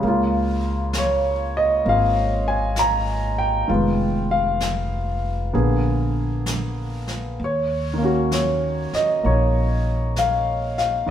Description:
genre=jazz ballad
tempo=65 BPM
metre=4/4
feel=swing 66% on 8ths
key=unclear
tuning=A4 = 439 Hz
part: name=warm concert grand piano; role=accompaniment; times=0.0-11.1 s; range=Db3 to Bb5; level=-21 LUFS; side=equal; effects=none
part: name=upright bass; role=bass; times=0.0-11.1 s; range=F1 to Eb2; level=-24 LUFS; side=equal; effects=none
part: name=jazz brush drum kit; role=drums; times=0.0-11.1 s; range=brushed snare drum, hi-hat, snare drum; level=-32 LUFS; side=right 1 dB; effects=none
room=wet stone room reverb, RT60 1.2 s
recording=band playing live in one room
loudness=-19 LUFS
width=side -10 dB against mid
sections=0.0-11.1 A section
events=none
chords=0.0 Db6; 3.7 Fm7b5; 5.5 Bb7b9; 7.4 Ebm7

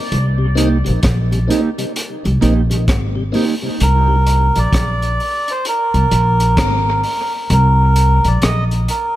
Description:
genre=dub reggae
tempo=65 BPM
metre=4/4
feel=swing 63% on 16ths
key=C minor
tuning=A4 = 438 Hz
part: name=upright bass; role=bass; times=0.1-8.9 s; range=Ab1 to C2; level=-14 LUFS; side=equal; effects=none
part: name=crunchy breakbeat drum kit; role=drums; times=0.1-9.2 s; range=hi-hat, kick drum, rim click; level=-20 LUFS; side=equal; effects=dub echo
part: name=mellow tonewheel organ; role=accompaniment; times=0.4-4.2 s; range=C3 to Eb4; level=-24 LUFS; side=left 2 dB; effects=slow rotary speaker, dub echo
part: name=mellow electric guitar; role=accompaniment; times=0.6-3.5 s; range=Bb3 to G4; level=-21 LUFS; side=right 4 dB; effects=analog chorus, dub echo
part: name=melodica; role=melody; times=3.8-9.2 s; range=Bb4 to Eb5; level=-18 LUFS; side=right 1 dB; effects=dub echo
room=light reverb, studio ambience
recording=none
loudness=-13 LUFS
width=side -14 dB against mid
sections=0.0-9.2 A section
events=kick muted 7.5-9.2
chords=0.0 Cm7; 3.8 C5; 7.5 Abadd9 (rootless)

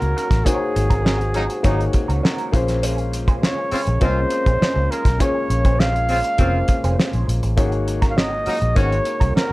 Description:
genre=lush 1970s-style soul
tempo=101 BPM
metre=4/4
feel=straight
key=Bb minor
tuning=A4 = 437 Hz
part: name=warm flugelhorn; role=melody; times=0.0-9.5 s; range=Ab4 to F5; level=-23 LUFS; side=equal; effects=none
part: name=warm baby grand piano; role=accompaniment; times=0.0-9.5 s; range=Bb3 to Eb5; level=-26 LUFS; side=left 3 dB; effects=none
part: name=dark French horn section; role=sustained chords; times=0.0-9.5 s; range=C3 to Gb4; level=-33 LUFS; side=right 1 dB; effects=none
part: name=electric guitar through a small old amp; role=riff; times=0.0-9.5 s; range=Db4 to Db5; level=-29 LUFS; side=right 4 dB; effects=wah
part: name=vintage muted fingered electric bass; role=bass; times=0.0-9.5 s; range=F1 to Db2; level=-21 LUFS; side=equal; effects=none
part: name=cloth-damped thuddy drum kit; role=drums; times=0.0-9.5 s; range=hi-hat, kick drum, snare drum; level=-20 LUFS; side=equal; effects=none
part: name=warm horn section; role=stabs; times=1.3-9.0 s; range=Bb2 to Gb4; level=-26 LUFS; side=left 1 dB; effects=none
room=light reverb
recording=cassette tape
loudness=-16 LUFS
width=side -20 dB against mid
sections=0.0-9.5 A section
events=none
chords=0.0 Ab9sus4; 2.5 Bbm9; 7.6 Ab9sus4

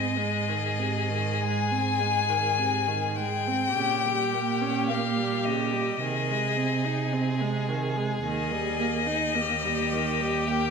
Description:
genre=classical, slow romantic movement for string quartet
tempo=47-54 BPM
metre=4/4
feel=rubato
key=Ab major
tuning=A4 = 440 Hz
part: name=clear violin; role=melody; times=0.0-10.7 s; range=Eb5 to Ab5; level=-28 LUFS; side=left 8 dB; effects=none
part: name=rich violin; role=second line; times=0.0-10.7 s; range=G4 to Ab4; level=-32 LUFS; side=left 2 dB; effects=none
part: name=rich viola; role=accompaniment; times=0.0-10.7 s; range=C3 to Eb4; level=-31 LUFS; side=right 4 dB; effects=none
part: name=rich cello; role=bass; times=0.0-10.7 s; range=Eb2 to C3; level=-30 LUFS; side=right 5 dB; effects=none
room=wet recital hall reverb, RT60 1.2 s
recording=minimal, uncompressed stereo recording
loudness=-24 LUFS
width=side -5 dB against mid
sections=0.0-10.7 A section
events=none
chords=0.0 Ab; 3.8 Gdim/Bb; 6.0 Ab/C; 8.3 Eb

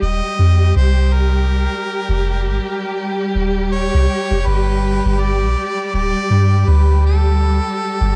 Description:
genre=trip hop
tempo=81 BPM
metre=4/4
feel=swing 59% on 16ths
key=unclear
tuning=A4 = 440 Hz
part: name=warm harmonica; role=melody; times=0.0-8.2 s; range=A4 to Eb5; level=-26 LUFS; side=equal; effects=vintage 12-bit sampler grit, tape echo
part: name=dark symphonic string section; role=sustained chords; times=0.0-8.2 s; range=G3 to G4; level=-24 LUFS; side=equal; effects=none
part: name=soft 808-style bass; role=bass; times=0.0-8.2 s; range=D1 to G2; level=-17 LUFS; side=equal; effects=none
room=light reverb, small room reverb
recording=nothing above 10.7 kHz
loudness=-16 LUFS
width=mono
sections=0.0-8.2 A section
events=none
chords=0.0 F7(no3); 4.5 G

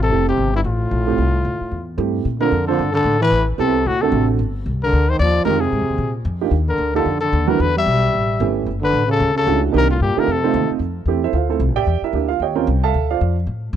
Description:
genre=jazz, small-group swing and bop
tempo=224 BPM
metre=4/4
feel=swing 58% on 8ths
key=Bb major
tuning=A4 = 441 Hz
part: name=warm trumpet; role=melody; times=0.0-10.7 s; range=E4 to E5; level=-20 LUFS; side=left 5 dB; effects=none
part: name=growling trombone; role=second line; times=0.0-10.7 s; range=G2 to G3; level=-22 LUFS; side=right 3 dB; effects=slapback echo
part: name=upright bass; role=bass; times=0.0-13.8 s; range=F1 to Bb2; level=-20 LUFS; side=left 1 dB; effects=none
part: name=warm baby grand piano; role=accompaniment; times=0.1-13.4 s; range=G3 to A5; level=-20 LUFS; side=right 12 dB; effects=none
room=small room ambience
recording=dry, close 1970s-style studio recording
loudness=-16 LUFS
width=side -10 dB against mid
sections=0.0-2.2 A section; 2.2-10.8 B section; 10.8-13.8 C section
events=none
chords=0.1 Fmaj9; 2.2 Bbmaj7; 3.3 Am7; 3.9 D7; 4.4 Gm7; 5.5 Fm7; 6.0 Bb; 6.5 Ebmaj7; 7.6 Em; 8.1 A7; 8.7 Dmaj7; 9.7 Cm7; 10.3 F7; 10.8 Fmaj9; 11.9 Em7b5; 12.4 Eb13; 12.9 Dm9

